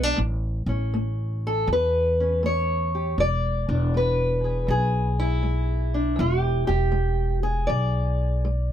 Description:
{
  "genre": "acoustic country blues, solo or duo",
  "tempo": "80 BPM",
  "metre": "4/4",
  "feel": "swing 66% on 8ths",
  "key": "E mixolydian",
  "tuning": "A4 = 439 Hz",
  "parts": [
    { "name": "fingerpicked steel-string acoustic guitar", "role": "melody", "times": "0.0-8.7 s", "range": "E2 to D5", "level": "-24 LUFS", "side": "left 1 dB", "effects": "none" },
    { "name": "upright bass", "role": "bass", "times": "0.0-8.7 s", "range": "E1 to E2", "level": "-24 LUFS", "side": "equal", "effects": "none" }
  ],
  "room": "little or no reverb",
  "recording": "close, detailed microphones",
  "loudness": "-21 LUFS",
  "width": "side -10 dB against mid",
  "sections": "0.0-8.7 A section",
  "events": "none",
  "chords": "0.2 A; 3.2 E7",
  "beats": "| 0.18 0.93 1.68 2.43 | 3.18 3.93 4.68 5.44 | 6.19 6.94 7.69 8.45"
}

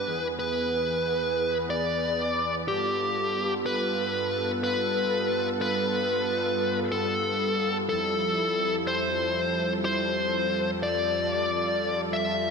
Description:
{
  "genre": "synthwave",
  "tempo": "92 BPM",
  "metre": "4/4",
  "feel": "straight",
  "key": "unclear",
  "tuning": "A4 = 439 Hz",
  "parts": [
    { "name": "dark smooth lead guitar", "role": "melody", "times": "0.0-12.5 s", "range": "G4 to E5", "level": "-26 LUFS", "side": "left 1 dB", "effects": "overdrive, shimmer reverb, ping-pong delay" },
    { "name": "soft supersaw", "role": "sustained chords", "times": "0.0-12.5 s", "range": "E2 to B4", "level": "-30 LUFS", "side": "right 1 dB", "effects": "shimmer reverb" }
  ],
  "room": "wet lush hall reverb, RT60 2.4 s",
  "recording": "bright 1980s-style digital production",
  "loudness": "-24 LUFS",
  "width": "side -5 dB against mid",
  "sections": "0.0-2.7 A section; 2.7-12.5 B section",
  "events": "none",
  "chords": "0.1 E; 2.7 G7; 7.9 Fmaj7",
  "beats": "| 0.07 0.72 1.37 2.02 | 2.68 3.33 3.98 4.63 | 5.29 5.94 6.59 7.24 | 7.89 8.55 9.20 9.85 | 10.50 11.15 11.81 12.46"
}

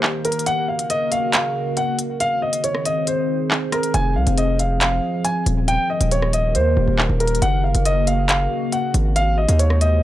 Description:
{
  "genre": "hip hop, drill",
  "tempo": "138 BPM",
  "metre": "4/4",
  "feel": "half-time",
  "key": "unclear",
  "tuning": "A4 = 442 Hz",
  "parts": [
    { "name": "dark concert grand piano", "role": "melody", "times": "0.0-10.0 s", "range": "Bb4 to Ab5", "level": "-22 LUFS", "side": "equal", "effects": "tape echo" },
    { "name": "dark analog pad", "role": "sustained chords", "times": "0.0-10.0 s", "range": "C3 to C5", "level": "-25 LUFS", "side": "equal", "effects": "chorus, phaser" },
    { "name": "drill drum kit", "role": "drums", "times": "0.0-9.9 s", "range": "handclaps, hi-hat, rim click", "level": "-22 LUFS", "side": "equal", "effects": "none" },
    { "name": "distorted 808-style bass", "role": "bass", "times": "3.9-10.0 s", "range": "Eb1 to Eb2", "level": "-18 LUFS", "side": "equal", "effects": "distortion" }
  ],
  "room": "little or no reverb",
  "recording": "dry, gritty hardware recording, cassette tape",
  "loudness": "-17 LUFS",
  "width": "side -14 dB against mid",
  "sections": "0.0-10.0 A section",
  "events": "break 0.0-3.9; kick muted 2.2-3.9",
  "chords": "0.5 Gb; 2.2 Ab; 3.9 Fm; 5.7 Eb; 7.4 Gb; 9.2 Ab",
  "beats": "0.03 | 0.46 0.90 1.33 1.77 | 2.20 2.64 3.07 3.51 | 3.94 4.38 4.81 5.25 | 5.68 6.12 6.55 6.99 | 7.42 7.86 8.29 8.72 | 9.16 9.59 10.03"
}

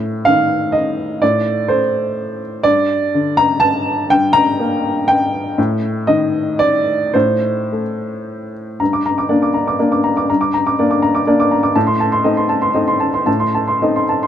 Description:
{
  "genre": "neoclassical minimalist piano",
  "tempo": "106-128 BPM",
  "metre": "3/4",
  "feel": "rubato",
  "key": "G minor",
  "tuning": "A4 = 440 Hz",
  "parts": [
    { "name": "warm upright piano", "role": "solo", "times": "0.0-14.3 s", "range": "G2 to D6", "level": "-14 LUFS", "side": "equal", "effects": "none" }
  ],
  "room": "light reverb",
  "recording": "dark, warm production",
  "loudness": "-13 LUFS",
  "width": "side -10 dB against mid",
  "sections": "0.0-8.8 A section; 8.8-14.3 B section",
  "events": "none",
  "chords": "0.0 Adim; 2.6 Gm; 5.6 Adim; 8.8 Gm; 11.8 Adim",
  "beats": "0.24 0.73 | 1.21 1.69 2.16 | 2.64 3.13 3.61 | 4.10 4.59 5.08 | 5.57 6.08 6.59 | 7.14 7.71 8.26 | 8.80 9.30 9.79 | 10.29 10.78 11.27 | 11.75 12.24 12.74 | 13.27 13.81"
}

